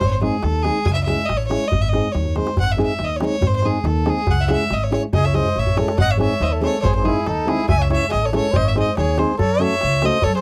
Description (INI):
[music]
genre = balkan folk, Balkan wedding band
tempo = 141 BPM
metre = 2/4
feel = straight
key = G# phrygian dominant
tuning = A4 = 442 Hz
[part]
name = clear fiddle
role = melody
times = 0.0-10.4 s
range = G#4 to G#5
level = -24 LUFS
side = equal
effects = none
[part]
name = upright bass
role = bass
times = 0.0-10.4 s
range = G#1 to F#2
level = -24 LUFS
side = equal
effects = none
[part]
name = darbuka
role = percussion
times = 0.0-10.4 s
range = none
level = -26 LUFS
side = equal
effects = none
[part]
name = nylon-string guitar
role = accompaniment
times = 0.2-10.2 s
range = G#3 to A4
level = -25 LUFS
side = equal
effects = none
[part]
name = mellow trumpet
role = second line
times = 5.1-10.4 s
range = D#4 to E5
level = -27 LUFS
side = equal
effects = none
[sound]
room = little or no reverb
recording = dry, close 1970s-style studio recording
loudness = -19 LUFS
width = mono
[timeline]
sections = 0.0-2.6 A section; 2.6-9.4 A section; 9.4-10.4 B section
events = drum fill 2.2-2.6, 5.5-6.0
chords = 0.0 G#; 0.9 C#m; 1.7 G#; 4.3 C#m; 6.0 G#; 7.7 C#m; 8.5 G#; 9.4 F#m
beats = | 0.00 0.43 | 0.86 1.29 | 1.71 2.14 | 2.57 3.00 | 3.42 3.85 | 4.28 4.70 | 5.13 5.56 | 5.98 6.41 | 6.84 7.26 | 7.69 8.11 | 8.54 8.97 | 9.39 9.82 | 10.24